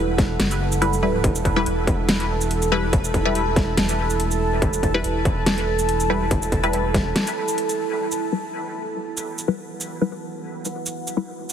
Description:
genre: deep dubstep.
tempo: 142 BPM.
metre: 4/4.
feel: swing 54% on 16ths, half-time.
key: E minor.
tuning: A4 = 438 Hz.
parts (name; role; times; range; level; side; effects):
deep dark ambient pad; sustained chords; 0.0-11.5 s; E4 to A5; -26 LUFS; right 3 dB; chorus, built-in reverb, vintage 12-bit sampler grit.
filtered dub chord stab; stabs; 0.0-11.3 s; G3 to B4; -26 LUFS; left 2 dB; phaser, dub echo.
soft dub sub bass; bass; 0.0-7.1 s; E1 to F#1; -25 LUFS; equal; tube saturation.
dubstep drum kit; drums; 0.2-11.5 s; hi-hat, shaker, snare drum; -25 LUFS; equal; none.
electronic kick drum; drums; 0.2-7.0 s; none; -22 LUFS; equal; distortion.
room: light reverb.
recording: heavily compressed radio sound, multiband compression.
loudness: -20 LUFS.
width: side -8 dB against mid.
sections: 0.0-8.0 A section; 8.0-11.5 B section.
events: drop 0.0-8.0; break 7.2-8.0.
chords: 0.0 Em.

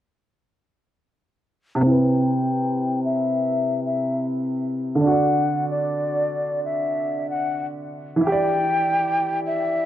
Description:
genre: hip hop.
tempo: 75 BPM.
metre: 4/4.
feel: swing 63% on 16ths.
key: unclear.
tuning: A4 = 441 Hz.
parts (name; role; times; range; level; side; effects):
warm upright piano; accompaniment; 1.8-9.9 s; C3 to D5; -22 LUFS; right 1 dB; cassette tape, low-pass filter.
breathy mellow silver concert flute; melody; 1.9-9.9 s; D5 to G5; -24 LUFS; left 2 dB; low-pass filter.
room: moderate plate reverb, RT60 3.1 s.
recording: dark, warm production.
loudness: -20 LUFS.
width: side -12 dB against mid.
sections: 1.8-9.9 A section.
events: filter sweep 1.8-9.9.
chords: 1.8 Cmaj7; 5.0 D; 8.2 Em7.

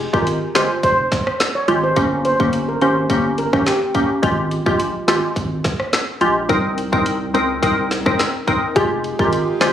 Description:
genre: dancehall.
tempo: 106 BPM.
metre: 4/4.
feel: straight.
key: F minor.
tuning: A4 = 440 Hz.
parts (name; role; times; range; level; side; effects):
glassy wavetable pluck; accompaniment; 0.0-9.7 s; Ab3 to Bb4; -18 LUFS; left 1 dB; chorus.
saturated sub bass; bass; 0.0-9.7 s; F1 to Db2; -25 LUFS; right 1 dB; none.
steel pan; melody; 0.1-4.1, 8.8-9.7 s; G4 to Db5; -20 LUFS; right 1 dB; tape echo.
island pop drum kit; drums; 0.1-9.7 s; finger snaps, hi-hat, kick drum, rim click, snare drum; -21 LUFS; equal; none.
airy breathy pad; sustained chords; 9.0-9.7 s; Ab3 to G4; -25 LUFS; right 5 dB; chorus, sidechain pumping.
room: light reverb, digital ambience.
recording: recorded on a phone in the room, studio reverb.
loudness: -16 LUFS.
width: side -10 dB against mid.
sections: 0.0-9.7 A section.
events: none.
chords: 0.0 Fmadd9; 2.0 Gdim; 4.2 Fmadd9/Ab; 6.5 Cm7; 8.8 Fmadd9.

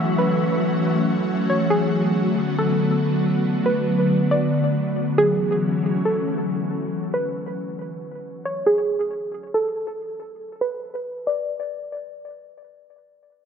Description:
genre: hip hop.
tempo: 138 BPM.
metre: 4/4.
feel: half-time.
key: unclear.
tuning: A4 = 440 Hz.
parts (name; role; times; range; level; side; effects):
ethereal airy pad; sustained chords; 0.0-6.9 s; D3 to F#4; -21 LUFS; left 1 dB; ensemble chorus, built-in reverb, low-pass filter.
wind-like tuned noise texture; texture; 0.0-1.7 s; A3 to E5; -32 LUFS; equal; built-in reverb.
soft round pluck; melody; 0.2-12.1 s; G#4 to D5; -24 LUFS; right 1 dB; chorus, low-pass filter, tape echo.
room: moderate plate reverb, RT60 2.9 s.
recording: echo-heavy mix.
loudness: -20 LUFS.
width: side -7 dB against mid.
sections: 0.0-12.1 A section.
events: filter sweep 0.0-12.1.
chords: 0.0 F#m7; 1.7 Bm7; 5.2 F#m7; 8.7 N.C..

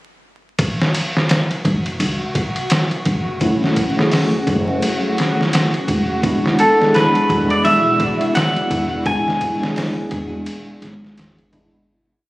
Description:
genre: trip hop.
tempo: 85 BPM.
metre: 4/4.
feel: swing 59% on 16ths.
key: F# minor.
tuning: A4 = 440 Hz.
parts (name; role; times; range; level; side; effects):
trip hop sampler-style drum kit; drums; 0.6-11.7 s; hi-hat, kick drum, ride cymbal, snare drum; -20 LUFS; equal; none.
bowed-like drone; texture; 1.3-11.9 s; F#4; -27 LUFS; right 1 dB; built-in reverb.
upright bass; bass; 1.6-11.8 s; E1 to E2; -25 LUFS; equal; none.
bright tine electric piano; accompaniment; 3.4-11.9 s; F#3 to G#4; -20 LUFS; equal; medium stereo tremolo, harmonic tremolo, vintage 12-bit sampler grit, tape echo.
string machine, cellos; sustained chords; 6.2-11.8 s; B3 to D5; -27 LUFS; equal; phaser, ensemble chorus, vintage 12-bit sampler grit.
clean electric guitar; melody; 6.6-9.7 s; A4 to G#5; -16 LUFS; equal; tape echo.
room: light reverb, digital ambience.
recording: recorded on a phone in the room, club reverb, vinyl crackle, compression.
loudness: -15 LUFS.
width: side -18 dB against mid.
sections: 0.6-11.9 groove.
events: fade-out 8.1-11.9.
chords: 0.6 F#m7; 6.2 E7.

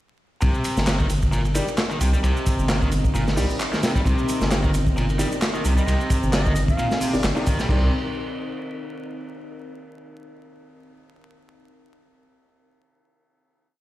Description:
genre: breakbeat, breaks.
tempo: 132 BPM.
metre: 4/4.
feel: swing 56% on 16ths.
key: C minor pentatonic.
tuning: A4 = 440 Hz.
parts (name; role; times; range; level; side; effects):
deep dark ambient pad; sustained chords; 1.2-7.9 s; C4 to Eb5; -31 LUFS; left 1 dB; chorus, built-in reverb, sidechain pumping.
cranked stack guitar; riff; 0.4-7.9 s; Bb2 to G3; -27 LUFS; equal; overdrive, digital delay.
saturated sub bass; bass; 0.4-7.9 s; G1 to C2; -22 LUFS; equal; none.
crunchy breakbeat drum kit; drums; 0.4-7.8 s; crash cymbal, hi-hat, kick drum, ride cymbal, snare drum; -24 LUFS; equal; none.
house drum kit; drums; 0.4-7.7 s; handclaps, hi-hat, shaker; -32 LUFS; right 1 dB; none.
warm grand piano; stabs; 1.6-7.9 s; Eb4 to D5; -29 LUFS; equal; digital delay.
mellow silver concert flute; melody; 5.8-7.1 s; Eb5 to F5; -31 LUFS; equal; AM radio sound, digital delay.
room: little or no reverb.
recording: played on a big sound system in a bare room, stone room reverb, vinyl crackle.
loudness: -19 LUFS.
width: side -15 dB against mid.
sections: 0.4-7.7 drop; 7.7-9.5 final chord.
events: drop 0.4-7.7.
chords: 0.4 Cm7; 7.7 Cm9.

